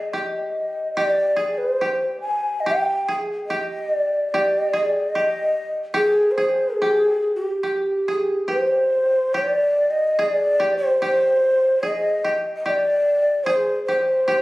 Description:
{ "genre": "japanese traditional, Japanese chamber music", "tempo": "72 BPM", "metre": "2/4", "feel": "rubato", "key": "G miyako bushi", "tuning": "A4 = 440 Hz", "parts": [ { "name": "breathy mellow shakuhachi", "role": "melody", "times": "0.0-14.4 s", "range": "G4 to Ab5", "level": "-19 LUFS", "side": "equal", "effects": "none" }, { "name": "koto", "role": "second line", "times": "0.0-14.4 s", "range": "G4 to Ab4", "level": "-27 LUFS", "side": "right 1 dB", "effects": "none" } ], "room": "light reverb", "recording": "recorded on a phone in the room, studio reverb, compression", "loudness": "-18 LUFS", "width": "side -19 dB against mid", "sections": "0.0-9.3 A section; 9.3-14.4 B section", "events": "none", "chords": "none" }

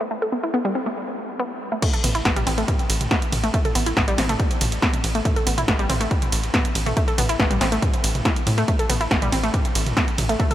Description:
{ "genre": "driving peak-time techno", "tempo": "140 BPM", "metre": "4/4", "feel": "straight", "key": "A minor", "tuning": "A4 = 441 Hz", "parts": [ { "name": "wide unison pluck", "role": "riff", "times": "0.0-10.5 s", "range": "G3 to A4", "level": "-24 LUFS", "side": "equal", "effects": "overdrive, sidechain pumping, analog delay" }, { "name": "electronic kick drum", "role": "drums", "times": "1.8-10.5 s", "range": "none", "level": "-22 LUFS", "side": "equal", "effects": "none" }, { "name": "punchy analog drum machine", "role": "drums", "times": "1.8-10.5 s", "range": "crash cymbal, hi-hat, ride cymbal, snare drum, toms", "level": "-24 LUFS", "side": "right 1 dB", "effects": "none" }, { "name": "tight sequencer bass", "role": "bass", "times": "2.0-10.4 s", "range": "A1 to A2", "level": "-25 LUFS", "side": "equal", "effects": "sidechain pumping" } ], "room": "moderate huge ambient reverb, RT60 6.0 s", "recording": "dreamy mix soaked in reverb", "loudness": "-19 LUFS", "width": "side -12 dB against mid", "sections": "0.0-1.8 A section; 1.8-10.5 B section", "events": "filter sweep on synth arpeggio sound 0.0-1.8; drop 1.8-10.5", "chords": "0.0 Am; 1.8 N.C." }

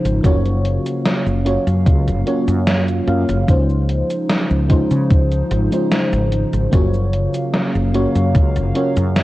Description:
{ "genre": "vaporwave", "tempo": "74 BPM", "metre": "4/4", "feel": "straight", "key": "Gb lydian", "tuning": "A4 = 441 Hz", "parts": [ { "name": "mellow FM electric piano", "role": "accompaniment", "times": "0.0-9.2 s", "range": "Ab3 to F5", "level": "-21 LUFS", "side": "equal", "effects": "lush chorus, vintage 12-bit sampler grit, analog delay" }, { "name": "warbly tape-like pad", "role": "sustained chords", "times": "0.0-9.2 s", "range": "Db3 to F5", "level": "-23 LUFS", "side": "equal", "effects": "chorus, built-in reverb" }, { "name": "woody fretless electric bass", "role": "bass", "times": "0.0-9.2 s", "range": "Gb1 to Db3", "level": "-18 LUFS", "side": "equal", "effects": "tube saturation" }, { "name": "gated 80s digital drum machine", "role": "drums", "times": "0.1-9.2 s", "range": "cabasa, hi-hat, snare drum", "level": "-21 LUFS", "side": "equal", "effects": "gated reverb, gated reverb snare, vintage 12-bit sampler grit" }, { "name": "electronic kick drum", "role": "drums", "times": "0.2-8.5 s", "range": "none", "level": "-14 LUFS", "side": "equal", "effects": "vintage 12-bit sampler grit" } ], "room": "light reverb, digital ambience", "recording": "worn, warbling old tape, cassette tape, warbly pitch drift", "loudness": "-14 LUFS", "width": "side -17 dB against mid", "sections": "0.0-9.2 A section", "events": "none", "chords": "0.2 Gbmaj7; 3.5 Dbmaj9; 6.7 Gbmaj7" }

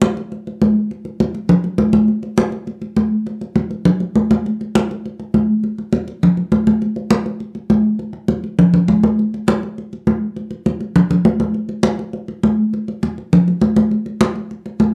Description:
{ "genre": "latin", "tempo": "203 BPM", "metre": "4/4", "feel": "straight", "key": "none", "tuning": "none", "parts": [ { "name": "congas", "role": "percussion", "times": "0.0-14.9 s", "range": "none", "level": "-17 LUFS", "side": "equal", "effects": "none" } ], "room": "wet studio reverb, RT60 0.6 s", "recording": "none", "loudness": "-17 LUFS", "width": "mono", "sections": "0.0-8.0 A section; 8.0-14.9 B section", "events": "none", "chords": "none" }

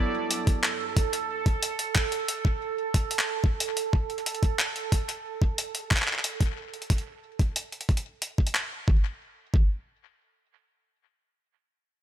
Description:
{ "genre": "IDM", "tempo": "91 BPM", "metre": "4/4", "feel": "straight", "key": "G major", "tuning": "A4 = 441 Hz", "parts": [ { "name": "phased analog pad", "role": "sustained chords", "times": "0.0-1.0 s", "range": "G2 to D5", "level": "-33 LUFS", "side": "equal", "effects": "phaser, chorus, vintage 12-bit sampler grit" }, { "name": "bubbling stepped-filter texture", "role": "texture", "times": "0.0-6.3 s", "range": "A4", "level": "-33 LUFS", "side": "right 8 dB", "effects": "chorus, built-in reverb" }, { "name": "jungle sampler-style drum kit", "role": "drums", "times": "0.3-8.7 s", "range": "handclaps, hi-hat", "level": "-29 LUFS", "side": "equal", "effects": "studio ambience, ping-pong delay" }, { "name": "electronic kick drum", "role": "drums", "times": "0.5-9.7 s", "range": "none", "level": "-23 LUFS", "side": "equal", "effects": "studio ambience" } ], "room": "light reverb, digital ambience", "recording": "none", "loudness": "-25 LUFS", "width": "side -11 dB against mid", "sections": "0.0-8.9 A section; 8.9-11.5 B section", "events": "none", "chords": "0.0 Gmaj9; 3.6 N.C." }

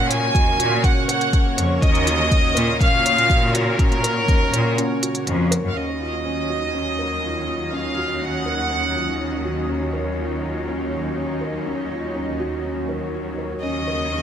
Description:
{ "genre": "piano and strings electronica", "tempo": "122 BPM", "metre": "4/4", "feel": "straight", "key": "Eb minor", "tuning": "A4 = 440 Hz", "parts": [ { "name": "warm chamber violin section", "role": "melody", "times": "0.0-9.4, 13.6-14.2 s", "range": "Bb4 to Ab5", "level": "-22 LUFS", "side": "right 1 dB", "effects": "digital delay" }, { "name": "lush unison pad", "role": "sustained chords", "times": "0.0-14.2 s", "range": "Db3 to Eb5", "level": "-28 LUFS", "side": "equal", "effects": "chorus, sidechain pumping" }, { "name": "felt-muted upright piano", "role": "riff", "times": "0.0-14.2 s", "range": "Db4 to Db5", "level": "-27 LUFS", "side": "equal", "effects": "digital delay" }, { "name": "bright symphonic cello section", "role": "bass", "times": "0.0-14.2 s", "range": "Eb2 to Bb2", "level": "-25 LUFS", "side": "left 1 dB", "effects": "sidechain pumping" }, { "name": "electronic hi-hat", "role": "drums", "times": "0.1-5.6 s", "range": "none", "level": "-26 LUFS", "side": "right 2 dB", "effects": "none" }, { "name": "electronic kick drum", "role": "drums", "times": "0.3-4.4 s", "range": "none", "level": "-18 LUFS", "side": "equal", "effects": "overdrive" } ], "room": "light reverb, small room reverb", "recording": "none", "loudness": "-18 LUFS", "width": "side -9 dB against mid", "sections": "0.0-5.8 A section; 5.8-14.2 B section", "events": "break 4.8-5.8", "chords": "0.0 Ebm9; 13.6 Gb/Eb" }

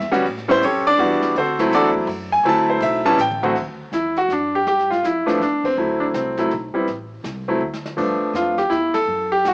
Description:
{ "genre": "jazz piano trio", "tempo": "163 BPM", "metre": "3/4", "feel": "swing 63% on 8ths", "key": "D mixolydian", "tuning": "A4 = 440 Hz", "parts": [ { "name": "clear concert grand piano", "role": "melody", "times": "0.0-9.5 s", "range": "D2 to A5", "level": "-17 LUFS", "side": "equal", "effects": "cassette tape, plate reverb" }, { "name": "upright bass", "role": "bass", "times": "0.0-9.5 s", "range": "A1 to A2", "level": "-33 LUFS", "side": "equal", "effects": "none" }, { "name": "jazz brush drum kit", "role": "drums", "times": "0.0-9.5 s", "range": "brushed snare drum, crash cymbal, hi-hat, kick drum, ride cymbal, snare drum, toms", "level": "-34 LUFS", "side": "equal", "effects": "cassette tape" } ], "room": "moderate studio reverb, RT60 0.5 s", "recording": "home recording on cassette, small speaker sound", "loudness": "-17 LUFS", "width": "side -29 dB against mid", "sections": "0.0-3.6 A section; 3.6-9.5 B section", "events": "grand piano solo 0.0-3.6; drum fill 3.2-3.6, 7.6-8.0; band accent 5.6, 8.9", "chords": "0.2 A7; 1.4 D7; 3.2 Dadd11/A; 3.6 D; 4.7 G7(no3); 5.8 D7; 6.9 Am; 7.6 N.C.; 8.0 G7" }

